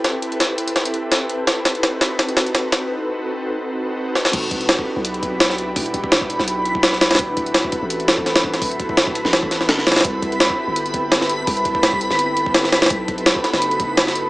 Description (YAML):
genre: drum and bass, jungle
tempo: 168 BPM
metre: 4/4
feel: swing 54% on 16ths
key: E minor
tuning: A4 = 441 Hz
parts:
  - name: ethereal airy pad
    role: sustained chords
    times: 0.0-14.3 s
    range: C4 to B4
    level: -23 LUFS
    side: equal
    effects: ensemble chorus, built-in reverb
  - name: jungle sampler-style drum kit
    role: drums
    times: 0.0-14.2 s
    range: crash cymbal, hi-hat, kick drum, snare drum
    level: -17 LUFS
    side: equal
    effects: high-pass filter on hats, high-pass filter on snare, high-pass filter on kick, high-pass filter on cymbals
  - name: long sustained 808-style bass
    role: bass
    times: 4.3-14.3 s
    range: D1 to C2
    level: -30 LUFS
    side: equal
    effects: none
  - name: backwards swelling texture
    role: texture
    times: 5.1-14.3 s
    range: B5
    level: -24 LUFS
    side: right 1 dB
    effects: built-in reverb
room: moderate plate reverb, RT60 1.9 s, digital ambience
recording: small speaker sound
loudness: -16 LUFS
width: side -20 dB against mid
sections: 0.0-4.3 A section; 4.3-14.3 B section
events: build-up 0.0-4.3; drum fill 0.0-2.9, 4.2; break 2.9-4.3; drop 4.3-14.3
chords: 0.0 Am9/C; 1.5 B7b9; 4.3 Em9; 7.2 D13; 10.0 Am9; 12.9 B7b9